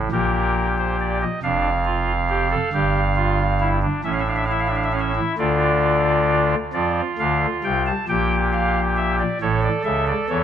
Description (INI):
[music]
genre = classical, baroque-style 3-part fugue for pipe organ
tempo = 45 BPM (dotted quarters)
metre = 6/8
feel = straight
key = G minor, D minor from 6.7 s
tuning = A4 = 440 Hz
[part]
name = pipe organ, soft reed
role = solo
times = 0.0-10.4 s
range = F1 to A5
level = -18 LUFS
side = equal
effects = none
[sound]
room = light reverb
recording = close, detailed microphones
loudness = -18 LUFS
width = side -9 dB against mid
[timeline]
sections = 0.0-6.7 A section; 6.7-10.4 B section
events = none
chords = 0.1 Gm/Bb; 1.4 Dm/F; 2.7 G5; 4.0 A; 5.4 Dm; 8.1 Gm/Bb; 9.4 A